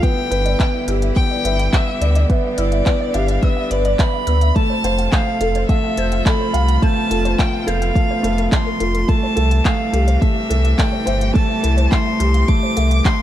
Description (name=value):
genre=piano and strings electronica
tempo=106 BPM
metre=4/4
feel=straight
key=C major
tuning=A4 = 441 Hz
part: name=clear violin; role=melody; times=0.0-13.2 s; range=D5 to D6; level=-23 LUFS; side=right 1 dB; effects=shimmer reverb
part: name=bright string quartet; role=sustained chords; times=0.0-13.2 s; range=C3 to A4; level=-29 LUFS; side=right 1 dB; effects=sidechain pumping, shimmer reverb
part: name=warbly dusty pluck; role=arpeggios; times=0.0-13.2 s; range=A4 to G6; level=-28 LUFS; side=left 3 dB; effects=lush chorus, sidechain pumping, ping-pong delay, shimmer reverb
part: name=felt-muted upright piano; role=riff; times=0.0-13.2 s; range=A3 to F5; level=-22 LUFS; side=equal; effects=shimmer reverb
part: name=electronic kick drum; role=drums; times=0.0-13.2 s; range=none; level=-17 LUFS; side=equal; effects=studio reverb
part: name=organic electronic drum kit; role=drums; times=0.0-13.2 s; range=handclaps, hi-hat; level=-26 LUFS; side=equal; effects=studio reverb
part: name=warm sub bass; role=bass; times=0.3-13.0 s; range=F1 to D2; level=-17 LUFS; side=equal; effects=tube saturation, sidechain pumping
room=light reverb, studio ambience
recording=dark, warm production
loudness=-15 LUFS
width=side -12 dB against mid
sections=0.0-13.2 A section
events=none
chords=0.0 G6; 4.6 F; 9.1 C6